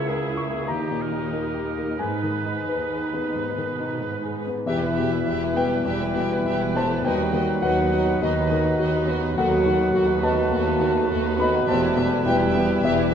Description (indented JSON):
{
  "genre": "classical, romantic movement for piano and orchestra",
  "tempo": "85-106 BPM",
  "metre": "4/4",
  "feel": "rubato",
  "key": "G# minor, E minor from 4.7 s",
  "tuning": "A4 = 443 Hz",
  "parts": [
    { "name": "clear grand piano", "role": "melody", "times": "0.0-13.1 s", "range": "C#2 to C#6", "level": "-25 LUFS", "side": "left 3 dB", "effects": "none" },
    { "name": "bright oboe", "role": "second line", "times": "0.0-13.1 s", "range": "G4 to B4", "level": "-34 LUFS", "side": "right 4 dB", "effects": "none" },
    { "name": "warm clarinet", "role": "second line", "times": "0.0-13.1 s", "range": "D#4 to F#4", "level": "-30 LUFS", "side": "right 1 dB", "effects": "none" },
    { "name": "rich chamber viola section", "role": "accompaniment", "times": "0.0-13.1 s", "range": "G3 to B4", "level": "-33 LUFS", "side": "right 3 dB", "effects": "none" },
    { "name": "warm chamber cello section", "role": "bass", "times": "0.0-13.1 s", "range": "C#2 to B2", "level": "-31 LUFS", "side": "right 6 dB", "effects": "none" },
    { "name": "rich chamber violin section", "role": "melody", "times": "4.7-13.1 s", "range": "A4 to E5", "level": "-36 LUFS", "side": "left 2 dB", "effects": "none" },
    { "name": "bright silver concert flute", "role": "second line", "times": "4.7-13.1 s", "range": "D#5 to B5", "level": "-31 LUFS", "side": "left 2 dB", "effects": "none" },
    { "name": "rich chamber violin section", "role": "second line", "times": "4.7-13.1 s", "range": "D#4 to G4", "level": "-32 LUFS", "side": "left 1 dB", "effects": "none" },
    { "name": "warm bassoon", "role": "accompaniment", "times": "4.7-13.1 s", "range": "E3 to G3", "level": "-30 LUFS", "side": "right 3 dB", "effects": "none" },
    { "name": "mellow French horn section", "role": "sustained chords", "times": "4.7-13.1 s", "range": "D#3 to B3", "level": "-27 LUFS", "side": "left 2 dB", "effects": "none" },
    { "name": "dark chamber double bass section", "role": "bass", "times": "4.7-13.1 s", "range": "E1 to D#2", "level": "-30 LUFS", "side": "right 4 dB", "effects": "none" }
  ],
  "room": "wet recital hall reverb, RT60 1.7 s",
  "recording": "none",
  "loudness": "-20 LUFS",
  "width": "side -8 dB against mid",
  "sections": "0.0-4.7 A section; 4.7-13.1 B section",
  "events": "none",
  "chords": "0.0 A#dim/C#; 0.7 D#; 2.0 G#m; 4.7 Em; 7.1 B/D#; 9.4 B7/D#; 11.7 Em"
}